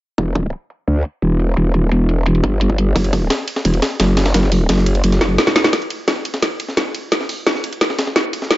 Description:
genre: dark technical drum and bass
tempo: 173 BPM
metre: 4/4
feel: straight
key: unclear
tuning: A4 = 439 Hz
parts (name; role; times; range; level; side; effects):
- growl bass; bass; 0.2-5.4 s; E1 to D2; -14 LUFS; equal; chorus, overdrive, sidechain pumping
- drum and bass drum kit; drums; 0.2-8.6 s; hi-hat, snare drum; -18 LUFS; equal; high-pass filter on hats, low-pass filter on hats, high-pass filter on snare, low-pass filter on snare, high-pass filter on room, low-pass filter on room
- electronic kick drum; drums; 0.2-8.6 s; none; -23 LUFS; equal; high-pass filter on kick, high-pass filter on room
- breakbeat sampler-style drum kit; drums; 3.0-8.6 s; hi-hat, ride cymbal, snare drum; -22 LUFS; equal; high-pass filter on cymbals, high-pass filter on snare, high-pass filter on hats
room: light reverb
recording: dark, warm production, nothing above 7.7 kHz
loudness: -15 LUFS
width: side -16 dB against mid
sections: 0.2-5.7 A section; 5.7-8.6 B section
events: drum fill 5.2-5.7, 5.7-8.6; build-up 5.7-8.6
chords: none

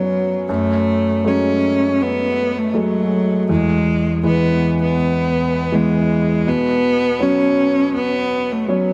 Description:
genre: pop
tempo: 80 BPM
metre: 4/4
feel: straight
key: F# minor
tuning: A4 = 441 Hz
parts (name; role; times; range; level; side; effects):
- rich cello; melody; 0.0-8.9 s; F#3 to C#4; -20 LUFS; equal; dub echo
- clear concert grand piano; accompaniment; 0.0-8.9 s; E2 to C#4; -21 LUFS; equal; dub echo
room: wet spring reverb, RT60 1.8 s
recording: echo-heavy mix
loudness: -17 LUFS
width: mono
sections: 0.0-8.9 A section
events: none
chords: 0.5 F#madd9; 3.5 E; 6.5 Bsus2

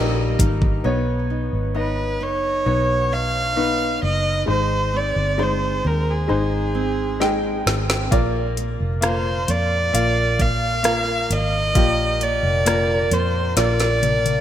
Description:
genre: pop ballad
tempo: 66 BPM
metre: 4/4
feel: straight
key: unclear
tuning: A4 = 436 Hz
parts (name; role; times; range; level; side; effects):
- warm violin; melody; 0.0-14.4 s; Ab4 to F5; -22 LUFS; right 1 dB; none
- bright upright piano; accompaniment; 0.0-14.4 s; G3 to G5; -25 LUFS; left 2 dB; none
- nylon-string guitar; arpeggios; 0.0-14.4 s; G2 to C#5; -29 LUFS; right 4 dB; wide subtle chorus, digital delay
- vintage muted fingered electric bass; bass; 0.0-14.4 s; F1 to F2; -23 LUFS; equal; none
- smooth R&B drum kit; drums; 0.4-0.8, 7.2-14.4 s; hi-hat, kick drum, rim click, snare drum, toms; -22 LUFS; equal; gated reverb
room: light reverb, small room ambience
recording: bright 1980s-style digital production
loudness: -18 LUFS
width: side -10 dB against mid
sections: 0.8-14.4 A section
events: drum fill 7.2-8.1, 13.6-14.4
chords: 0.0 Eb; 0.8 Badd9; 4.5 Ab; 8.1 Bb

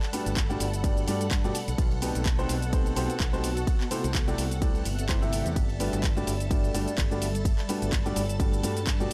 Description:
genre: piano house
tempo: 127 BPM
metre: 4/4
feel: swing 56% on 16ths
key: G major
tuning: A4 = 439 Hz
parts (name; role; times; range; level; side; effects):
- string machine, violins; sustained chords; 0.0-9.1 s; A4 to A5; -42 LUFS; equal; ensemble chorus, sidechain pumping
- house drum kit; drums; 0.0-9.1 s; cabasa, handclaps, hi-hat, ride cymbal; -38 LUFS; equal; none
- granular cloud pad; texture; 0.0-9.1 s; G3 to B5; -40 LUFS; equal; built-in reverb, sidechain pumping
- warm upright piano; riff; 0.1-9.1 s; G2 to E5; -34 LUFS; equal; sidechain pumping
- fingered electric bass; bass; 0.3-9.1 s; G1 to G2; -33 LUFS; equal; sidechain pumping
- electronic kick drum; drums; 0.4-9.0 s; none; -29 LUFS; equal; none
room: digital ambience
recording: dry, gritty hardware recording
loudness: -27 LUFS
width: mono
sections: 0.0-9.1 A section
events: none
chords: 0.0 Gmaj9; 1.5 B7b9b13; 3.7 C6; 5.6 Gmaj9

